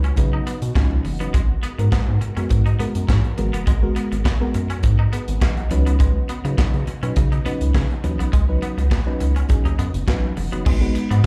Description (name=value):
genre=early-eighties boogie funk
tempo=103 BPM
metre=4/4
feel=straight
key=G# minor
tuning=A4 = 440 Hz
part: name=soft string machine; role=sustained chords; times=0.0-11.3 s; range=C#3 to B4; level=-38 LUFS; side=equal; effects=phaser, ensemble chorus, plate reverb
part: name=twangy electric guitar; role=riff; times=0.0-11.2 s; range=G#3 to D#4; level=-35 LUFS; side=equal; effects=ensemble chorus, slapback echo
part: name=rubbery square bass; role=bass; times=0.0-11.2 s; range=E#1 to C#3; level=-22 LUFS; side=equal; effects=none
part: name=modern studio drum kit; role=drums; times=0.0-11.3 s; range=crash cymbal, handclaps, hi-hat, kick drum, snare drum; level=-22 LUFS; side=equal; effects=none
part: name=mellow FM electric piano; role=accompaniment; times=0.2-11.2 s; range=F#3 to F#5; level=-29 LUFS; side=equal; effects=chorus, plate reverb, slapback echo
part: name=congas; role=percussion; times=0.2-10.8 s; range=none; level=-34 LUFS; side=equal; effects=none
room=little or no reverb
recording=live gig heard through the venue's PA, club reverb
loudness=-20 LUFS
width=mono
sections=0.0-10.7 A section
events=none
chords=0.0 C#9sus4; 1.3 G#m9; 5.7 C#9sus4; 10.7 G#m7